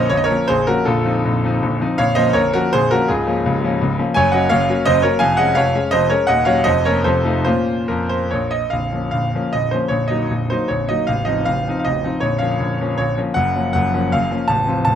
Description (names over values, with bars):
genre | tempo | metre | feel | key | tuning
classical, romantic triple-time dance for piano with dotted rhythms | 133-180 BPM | 3/4 | rubato | Bb minor | A4 = 441 Hz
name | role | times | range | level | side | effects
bright grand piano | solo | 0.0-15.0 s | A0 to A5 | -15 LUFS | equal | none
room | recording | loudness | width
light reverb | close, detailed microphones | -15 LUFS | side -9 dB against mid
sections
0.0-8.7 A section; 8.7-15.0 B section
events
none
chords
0.0 Bbm; 0.9 F7/Bb; 2.0 Bbm; 3.1 Bbm/Db; 4.2 Gb; 5.2 Db/F; 6.3 Ebm7; 6.7 Bbm/F; 7.0 F7; 7.5 Bbm; 9.9 Ebm/Bb; 11.1 F7/A; 12.2 Bbm; 13.4 Gbmaj7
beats
0.10 0.49 | 0.86 1.23 1.62 | 1.99 2.35 2.73 | 3.09 3.44 3.81 | 4.15 4.50 4.86 | 5.20 5.56 5.93 | 6.29 6.66 7.05 | 7.45 7.88 8.32 | 8.72 9.14 9.54 | 9.91 10.30 10.70 | 11.08 11.47 11.87 | 12.23 12.62 13.00 | 13.36 13.74 14.12 | 14.48 14.86